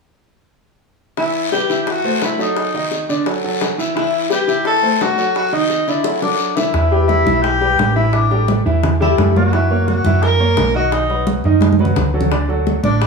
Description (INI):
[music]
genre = latin, salsa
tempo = 172 BPM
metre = 4/4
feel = straight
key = E minor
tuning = A4 = 440 Hz
[part]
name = warm tenor saxophone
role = melody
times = 1.2-13.1 s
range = D4 to A#4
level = -18 LUFS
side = left 3 dB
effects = plate reverb
[part]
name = bright grand piano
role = accompaniment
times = 1.2-13.1 s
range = D3 to E5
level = -19 LUFS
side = right 2 dB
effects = none
[part]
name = bongos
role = percussion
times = 1.2-13.1 s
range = none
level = -25 LUFS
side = left 6 dB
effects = none
[part]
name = guiro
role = percussion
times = 1.2-6.7 s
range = none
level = -28 LUFS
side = left 5 dB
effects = none
[part]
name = hollow-body short-scale fingered electric bass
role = bass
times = 6.7-13.1 s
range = A1 to F#2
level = -17 LUFS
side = right 1 dB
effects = none
[part]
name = congas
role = percussion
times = 6.7-13.1 s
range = none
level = -21 LUFS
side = equal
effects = none
[sound]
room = moderate studio reverb, RT60 0.8 s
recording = studio ambience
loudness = -14 LUFS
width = side -4 dB against mid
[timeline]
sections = 1.2-6.7 A section; 6.7-13.1 B section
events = drum fill 6.0-6.7, 11.6-12.3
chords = 1.2 Em; 1.9 F#m7b5; 2.6 D#mmaj7; 3.3 Esus24; 4.0 Em; 4.7 F#m7b5; 5.4 D#mmaj7; 6.0 Dadd9; 6.7 Em; 8.1 A7sus4; 9.5 F#7; 10.9 B; 12.3 D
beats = | 1.17 1.52 1.87 2.22 | 2.57 2.92 3.26 3.61 | 3.96 4.31 4.66 5.00 | 5.35 5.70 6.05 6.40 | 6.75 7.09 7.44 7.79 | 8.14 8.49 8.83 9.18 | 9.53 9.88 10.23 10.57 | 10.92 11.27 11.62 11.97 | 12.31 12.66 13.01